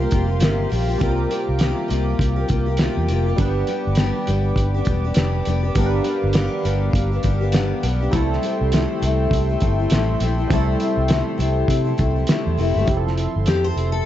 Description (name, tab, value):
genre	indie pop, bedroom pop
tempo	101 BPM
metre	4/4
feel	swing 60% on 16ths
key	unclear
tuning	A4 = 438 Hz
part	picked steel-string acoustic guitar	accompaniment	0.0-14.0 s	C3 to C5	-24 LUFS	left 5 dB	lush chorus, warbly pitch drift
part	warm analog keys	accompaniment	0.0-14.1 s	F3 to B4	-27 LUFS	right 4 dB	chorus, phaser, cassette tape
part	warm analog pad	sustained chords	0.0-14.1 s	A4 to D6	-30 LUFS	equal	chorus
part	vintage muted fingered electric bass	bass	0.0-14.0 s	E1 to C3	-21 LUFS	equal	none
part	cloth-damped thuddy drum kit	drums	0.1-13.9 s	hi-hat, kick drum, snare drum	-22 LUFS	equal	none
room	small room ambience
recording	dark, warm production, nothing above 7.9 kHz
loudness	-17 LUFS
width	side -12 dB against mid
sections	0.0-12.9 A section; 12.9-14.1 B section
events	steel-string acoustic guitar solo 12.9-14.1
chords	0.0 C7sus4; 3.4 G; 8.1 C6; 12.9 Fmaj7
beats	0.41 | 1.01 1.60 2.19 2.79 | 3.38 3.98 4.57 5.16 | 5.76 6.35 6.94 7.54 | 8.13 8.72 9.32 9.91 | 10.50 11.10 11.69 12.28 | 12.87 13.47